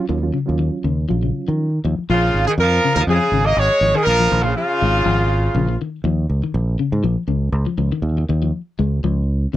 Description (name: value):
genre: afrobeat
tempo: 121 BPM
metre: 4/4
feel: straight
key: Bb minor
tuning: A4 = 440 Hz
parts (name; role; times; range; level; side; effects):
- reed electric piano; accompaniment; 0.0-1.7 s; Gb3 to F4; -25 LUFS; right 6 dB; overdrive, fast tremolo
- clean electric guitar; arpeggios; 0.1-9.6 s; Db3 to Ab3; -24 LUFS; left 6 dB; none
- fingered electric bass; bass; 0.1-9.6 s; Ab1 to Eb3; -19 LUFS; right 1 dB; none
- bright horn section; melody; 2.1-5.8 s; F4 to Eb5; -17 LUFS; equal; none
- bright tenor saxophone; second line; 2.1-5.8 s; Db3 to Bb3; -24 LUFS; right 3 dB; slapback echo
room: little or no reverb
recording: dry, close 1970s-style studio recording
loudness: -16 LUFS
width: side -14 dB against mid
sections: 0.0-2.1 A section; 2.1-9.6 B section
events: none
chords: 0.0 Ebm9; 2.1 Bbm7; 6.1 Ebsus2